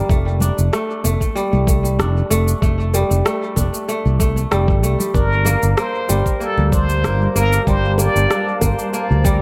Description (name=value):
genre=organic downtempo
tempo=95 BPM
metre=4/4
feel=straight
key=unclear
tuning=A4 = 440 Hz
part: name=kora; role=arpeggios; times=0.0-9.4 s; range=G3 to D4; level=-24 LUFS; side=equal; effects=tape echo
part: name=fretless electric bass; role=bass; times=0.1-9.4 s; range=F1 to D2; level=-20 LUFS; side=equal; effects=sidechain pumping
part: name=electronic cabasa and rim click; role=drums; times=0.1-9.4 s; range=none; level=-27 LUFS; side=equal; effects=none
part: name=electronic kick drum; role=drums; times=0.1-9.4 s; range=none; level=-21 LUFS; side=equal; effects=none
part: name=congas and bongos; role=percussion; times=0.4-8.8 s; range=none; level=-31 LUFS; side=equal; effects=none
part: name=trumpet with plunger mute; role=melody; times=5.2-8.6 s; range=A4 to D5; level=-24 LUFS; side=equal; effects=vintage 12-bit sampler grit, dub echo
part: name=granular cloud pad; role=sustained chords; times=5.8-9.4 s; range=G3 to A5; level=-29 LUFS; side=equal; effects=built-in reverb, sidechain pumping
room=moderate spring reverb, RT60 2.4 s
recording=echo-heavy mix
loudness=-17 LUFS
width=mono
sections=0.0-9.4 A section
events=none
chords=0.1 F; 5.1 Gm11